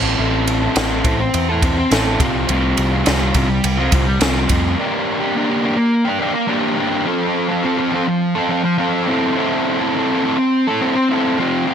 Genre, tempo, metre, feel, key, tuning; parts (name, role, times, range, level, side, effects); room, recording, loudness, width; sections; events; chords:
indie rock; 104 BPM; 4/4; straight; A4 = 440 Hz
fuzz guitar; riff; 0.0-11.7 s; F3 to A4; -16 LUFS; equal; distortion
growling picked electric bass; bass; 0.0-4.7 s; A1 to F2; -20 LUFS; equal; overdrive
compact cocktail drum kit; drums; 0.5-4.6 s; kick drum, ride cymbal, snare drum; -20 LUFS; equal; gated reverb
moderate plate reverb, RT60 1.7 s; bright 1980s-style digital production; -15 LUFS; side -8 dB against mid
0.0-4.8 A section; 4.8-11.7 A section
0.0 Am; 2.2 Csus4; 4.8 Gm; 7.1 F; 9.1 Am